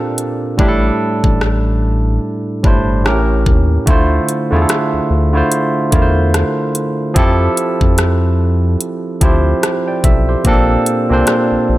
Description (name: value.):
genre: contemporary R&B.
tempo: 73 BPM.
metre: 4/4.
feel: swing 58% on 16ths.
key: D minor.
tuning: A4 = 441 Hz.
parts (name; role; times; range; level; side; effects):
barky tine electric piano; accompaniment; 0.0-11.8 s; A2 to G5; -15 LUFS; right 1 dB; none.
trap drum kit; drums; 0.2-11.5 s; hi-hat, kick drum, rim click; -16 LUFS; equal; none.
round analog bass; bass; 0.6-11.8 s; G1 to F2; -15 LUFS; equal; none.
room: digital ambience.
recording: none.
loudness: -12 LUFS.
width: side -16 dB against mid.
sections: 0.0-11.8 A section.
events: hi-hats muted 0.6-3.9.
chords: 0.0 Bbmaj7; 0.6 A7sus4; 3.1 A7b9; 3.9 Dm9; 7.2 Fmaj9; 10.4 Bbmaj7.